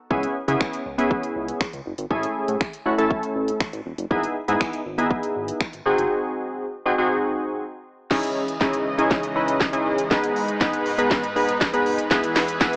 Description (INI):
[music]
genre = dance-pop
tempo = 120 BPM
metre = 4/4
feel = straight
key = C# minor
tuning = A4 = 436 Hz
[part]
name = glassy digital keys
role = accompaniment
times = 0.1-12.8 s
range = A3 to B4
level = -22 LUFS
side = equal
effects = chorus
[part]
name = chorused synth bass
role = bass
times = 0.1-6.1 s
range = E1 to C#3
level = -29 LUFS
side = equal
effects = sidechain pumping
[part]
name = house drum kit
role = drums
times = 0.1-12.8 s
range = crash cymbal, finger snaps, hi-hat, kick drum, shaker, snare drum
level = -24 LUFS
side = equal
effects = none
[part]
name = supersaw pad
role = sustained chords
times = 8.1-12.8 s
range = E2 to D#5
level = -26 LUFS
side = equal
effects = sidechain pumping
[part]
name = tambourine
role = percussion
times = 12.6-12.7 s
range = none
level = -38 LUFS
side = right 1 dB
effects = none
[sound]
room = light reverb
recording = worn, warbling old tape, cassette tape, warbly pitch drift, small speaker sound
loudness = -20 LUFS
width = side -28 dB against mid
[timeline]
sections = 0.0-8.1 A section; 8.1-12.8 B section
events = silent gap 6.1-8.1; build-up 8.1-12.8; drum fill 8.1-12.8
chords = 0.1 C#m7; 2.1 Amaj7; 4.1 Emaj7/G#; 5.9 G#7; 8.1 C#madd9; 10.1 G#m; 12.1 E